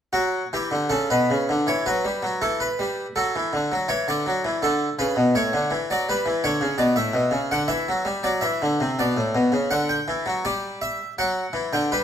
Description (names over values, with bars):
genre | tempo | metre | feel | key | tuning
classical, baroque-style suite movement for harpsichord | 82 BPM | 4/4 | rubato | D major | A4 = 441 Hz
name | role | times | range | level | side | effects
harpsichord | solo | 0.1-12.0 s | A2 to G5 | -21 LUFS | equal | none
room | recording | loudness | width
moderate recital hall reverb, RT60 1.3 s | close, detailed microphones | -21 LUFS | side -9 dB against mid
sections
0.1-12.0 A section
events
none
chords
0.1 D; 1.7 Em69; 3.1 D; 6.1 G; 7.5 D7; 9.0 G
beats
| 0.14 0.91 1.67 2.41 | 3.14 3.88 4.60 5.33 | 6.06 6.78 7.50 8.24 | 8.99 9.72 10.44 11.18 | 11.92